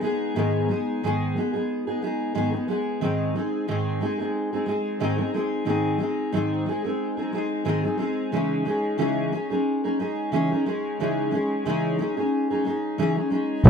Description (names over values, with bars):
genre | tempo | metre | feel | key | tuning
acoustic pop | 90 BPM | 4/4 | swing 55% on 16ths | unclear | A4 = 440 Hz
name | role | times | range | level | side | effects
fingerpicked steel-string acoustic guitar | accompaniment | 0.0-13.7 s | G#2 to B4 | -23 LUFS | equal | double-tracked left and right
vintage muted fingered electric bass | bass | 13.7 s | B1 | -7 LUFS | equal | none
room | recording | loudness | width
wet small room ambience, RT60 0.5 s | none | -23 LUFS | side -7 dB against mid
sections
0.0-13.7 A section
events
none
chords
0.0 G#m; 3.0 G#; 8.3 C#madd9